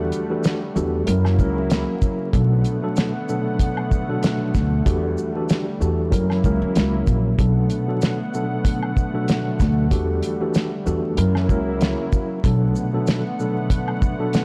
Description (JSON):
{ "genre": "hip hop, boom-bap hip-hop", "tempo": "95 BPM", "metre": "4/4", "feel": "swing 55% on 16ths", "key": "B minor", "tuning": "A4 = 440 Hz", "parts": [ { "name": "mellow tine electric piano", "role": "accompaniment", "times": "0.0-14.4 s", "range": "B2 to A#4", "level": "-26 LUFS", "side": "equal", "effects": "cassette tape, high-pass filter, low-pass filter" }, { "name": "warm analog pad", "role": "sustained chords", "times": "0.0-14.4 s", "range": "C#3 to F#5", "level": "-31 LUFS", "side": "equal", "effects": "chorus, high-pass filter, low-pass filter" }, { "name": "upright bass", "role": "bass", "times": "0.0-12.7 s", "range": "A#1 to F#2", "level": "-24 LUFS", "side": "equal", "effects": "transformer saturation" }, { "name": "cloth-damped thuddy drum kit", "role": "drums", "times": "0.1-14.4 s", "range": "hi-hat, kick drum, shaker, snare drum", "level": "-24 LUFS", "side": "equal", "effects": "none" }, { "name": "maracas and woodblock", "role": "percussion", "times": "0.1-14.4 s", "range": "none", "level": "-39 LUFS", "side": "equal", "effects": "none" } ], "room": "light reverb, small room ambience", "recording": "blown-out, overdriven recording, vinyl crackle, overdrive", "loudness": "-21 LUFS", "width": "mono", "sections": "0.0-14.4 A section", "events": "none", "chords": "0.0 Em11; 1.1 F#7; 2.3 Bm7; 4.9 Em11; 6.1 F#7; 7.4 Bm7; 9.9 Em11; 11.2 F#7; 12.4 Bm7" }